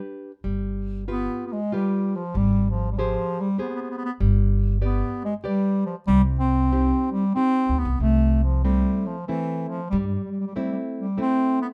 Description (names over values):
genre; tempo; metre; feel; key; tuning
italian folk, Italian serenade; 95 BPM; 3/4; rubato; C harmonic minor, C major from 8.0 s; A4 = 440 Hz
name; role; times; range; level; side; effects
nylon-string guitar; accompaniment; 0.0-11.7 s; C3 to D5; -32 LUFS; equal; none
upright bass; bass; 0.4-10.1 s; G1 to G2; -25 LUFS; equal; none
clear bass clarinet; melody; 1.1-11.7 s; E3 to C4; -26 LUFS; equal; none
room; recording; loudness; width
moderate small room reverb, RT60 0.6 s; none; -24 LUFS; mono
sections
0.0-8.0 A section; 8.0-11.7 B section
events
none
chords
0.4 G7; 2.3 Abmaj7; 4.2 G; 6.1 Cm; 8.0 C6